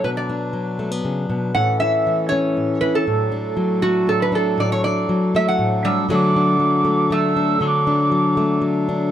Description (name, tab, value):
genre	acoustic folk duo or small band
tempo	119 BPM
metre	3/4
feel	straight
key	unclear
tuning	A4 = 437 Hz
part	metal-body resonator slide guitar	second line	0.0-8.6 s	F#3 to F#5	-21 LUFS	right 2 dB	none
part	fingerpicked plugged-in steel-string acoustic guitar	accompaniment	0.0-9.1 s	A2 to F#4	-20 LUFS	left 2 dB	none
part	hand-pumped harmonium	sustained chords	0.0-9.1 s	A2 to B4	-26 LUFS	equal	none
part	mellow hollow wooden whistle	melody	5.8-8.6 s	D6 to E6	-20 LUFS	right 3 dB	none
room	light reverb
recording	dry, close 1970s-style studio recording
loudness	-16 LUFS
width	side -10 dB against mid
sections	0.0-6.1 A section; 6.1-9.1 B section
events	resonator guitar played with a steel bar solo 0.0-6.1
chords	0.0 Bm; 1.6 A; 3.1 D/A; 6.1 D